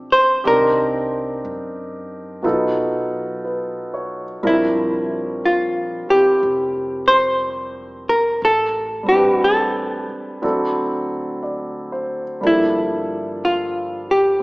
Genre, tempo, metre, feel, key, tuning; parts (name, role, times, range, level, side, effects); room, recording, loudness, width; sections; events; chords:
jazz ballad; 60 BPM; 4/4; swing 66% on 8ths; A4 = 441 Hz
warm concert grand piano; accompaniment; 0.0-14.4 s; F3 to E5; -22 LUFS; equal
upright bass; bass; 0.0-14.4 s; F1 to F#2; -39 LUFS; equal
hollow-body jazz guitar; melody; 0.1-14.4 s; E4 to C5; -16 LUFS; equal
moderate concert hall reverb, RT60 2.2 s; recorded in a church or concert hall, small speaker sound; -17 LUFS; side -24 dB against mid
0.0-14.4 A section
0.4 Cm7; 2.4 B7#11; 4.4 Bb69; 8.4 Am11; 10.4 D7; 12.4 Gm7